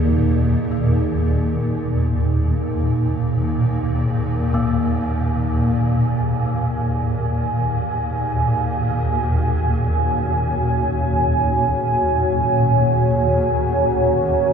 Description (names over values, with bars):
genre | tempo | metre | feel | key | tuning
dark ambient drone | free time | none | none | unclear | A4 = 442 Hz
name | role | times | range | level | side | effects
deep dark ambient pad | sustained chords | 0.0-14.5 s | Eb4 to Bb5 | -22 LUFS | right 2 dB | chorus, built-in reverb
gamelan-type bronze metallophone | arpeggios | 0.0-12.2 s | Bb3 | -29 LUFS | left 2 dB | ping-pong delay
swarming drone | drone | 0.0-14.5 s | Eb2 to Bb2 | -19 LUFS | equal | built-in reverb
quartz singing bowl | texture | 0.0-14.5 s | Ab4 | -39 LUFS | left 2 dB | none
room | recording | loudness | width
wet huge ambient reverb, RT60 7.2 s | dark, warm production | -17 LUFS | side -7 dB against mid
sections
0.0-14.5 A section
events
fade-in on ambient pad 0.0-14.5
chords
0.0 Ebm